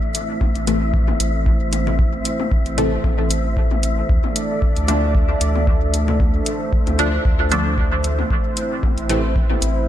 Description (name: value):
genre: dub techno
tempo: 114 BPM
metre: 4/4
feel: swing 55% on 16ths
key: unclear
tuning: A4 = 439 Hz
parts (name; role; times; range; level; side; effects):
- dark analog pad; sustained chords; 0.0-9.9 s; A3 to D5; -25 LUFS; right 2 dB; chorus, sidechain pumping
- wind-like tuned noise texture; texture; 0.0-9.9 s; E3 to E5; -28 LUFS; left 2 dB; built-in reverb, sidechain pumping
- electronic hi-hat; drums; 0.1-9.7 s; none; -24 LUFS; equal; overdrive
- electronic kick drum; drums; 0.4-9.5 s; none; -19 LUFS; equal; overdrive
- electronic toms and congas; percussion; 0.4-9.6 s; none; -31 LUFS; left 6 dB; sidechain pumping on toms, sidechain pumping on perc, dub echo
- round analog bass; bass; 0.6-9.9 s; A1 to D2; -21 LUFS; equal; tube saturation, sidechain pumping
- filtered dub chord stab; stabs; 0.7-9.2 s; A2 to D4; -24 LUFS; left 1 dB; chorus, phaser, sidechain pumping, dub echo
room: little or no reverb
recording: none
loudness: -16 LUFS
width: side -11 dB against mid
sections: 0.0-9.9 A section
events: none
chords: 0.0 Am; 4.1 D5; 8.3 Am